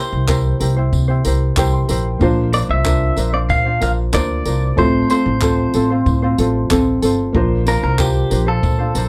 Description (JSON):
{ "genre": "acoustic pop", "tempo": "93 BPM", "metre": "4/4", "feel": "straight", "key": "unclear", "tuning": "A4 = 440 Hz", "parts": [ { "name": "clean electric guitar", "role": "melody", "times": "0.0-9.1 s", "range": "G4 to F5", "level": "-24 LUFS", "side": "equal", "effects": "none" }, { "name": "felt-muted upright piano", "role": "accompaniment", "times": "0.0-9.1 s", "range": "A3 to C6", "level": "-27 LUFS", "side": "equal", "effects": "none" }, { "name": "ukulele", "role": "accompaniment", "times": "0.0-9.1 s", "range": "C4 to C5", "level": "-22 LUFS", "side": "equal", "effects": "none" }, { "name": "upright bass", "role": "bass", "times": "0.1-9.1 s", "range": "G1 to C3", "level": "-20 LUFS", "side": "equal", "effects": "none" }, { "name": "jazz brush drum kit", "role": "drums", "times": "0.3-9.1 s", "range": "handclaps, kick drum, tambourine", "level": "-24 LUFS", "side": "equal", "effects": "none" }, { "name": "tambourine", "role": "percussion", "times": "0.3-9.1 s", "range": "none", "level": "-38 LUFS", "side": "equal", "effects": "none" } ], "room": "light reverb", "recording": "dark, warm production", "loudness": "-16 LUFS", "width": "mono", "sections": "0.0-9.1 A section", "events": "felt piano fill 1.2-2.2", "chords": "0.0 C7; 2.2 Bbadd9; 4.8 F/A; 7.3 Bbadd9" }